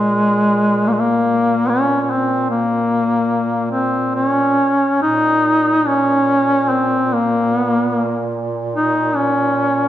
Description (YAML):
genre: caucasian folk, Caucasian lament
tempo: 73 BPM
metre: 3/4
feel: rubato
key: Bb minor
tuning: A4 = 441 Hz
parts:
  - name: warm duduk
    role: melody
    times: 0.0-9.9 s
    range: Ab3 to Eb4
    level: -14 LUFS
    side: left 1 dB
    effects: none
  - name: warm duduk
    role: drone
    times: 0.0-9.9 s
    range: Bb2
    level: -25 LUFS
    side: right 2 dB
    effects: none
room: wet recital hall reverb, RT60 1.8 s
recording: recorded in a church or concert hall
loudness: -14 LUFS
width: side -12 dB against mid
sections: 0.0-5.0 A section; 5.0-9.9 B section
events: none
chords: none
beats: | 0.05 0.85 1.66 | 2.47 3.29 4.15 | 5.01 5.85 6.69 | 7.53 8.35 9.17